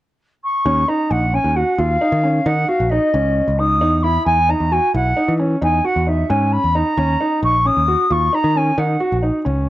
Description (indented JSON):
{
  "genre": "progressive instrumental, band music in an uneven meter",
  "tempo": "133 BPM",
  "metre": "7/4",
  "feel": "straight",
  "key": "Eb minor",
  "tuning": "A4 = 436 Hz",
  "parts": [
    { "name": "silver concert flute", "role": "melody", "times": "0.4-9.2 s", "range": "Eb5 to Eb6", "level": "-18 LUFS", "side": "equal", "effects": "cassette tape" },
    { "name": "warm concert grand piano", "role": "arpeggios", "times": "0.7-9.7 s", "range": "Db4 to Gb4", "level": "-20 LUFS", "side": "right 1 dB", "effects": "none" },
    { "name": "picked electric bass", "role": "bass", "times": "0.7-9.7 s", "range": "Bb1 to E3", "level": "-19 LUFS", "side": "equal", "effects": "none" }
  ],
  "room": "light reverb, small room ambience",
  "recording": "home recording on cassette",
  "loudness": "-15 LUFS",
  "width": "side -15 dB against mid",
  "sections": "0.7-9.7 A section",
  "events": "none",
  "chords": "0.0 N.C.; 0.7 Ebm7; 3.8 Emaj7; 7.0 Bbm",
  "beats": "0.21 | 0.66 1.11 1.56 2.01 2.46 2.92 3.37 | 3.82 4.27 4.72 5.17 5.62 6.08 6.53 | 6.98 7.43 7.88 8.33 8.78 9.23 9.68"
}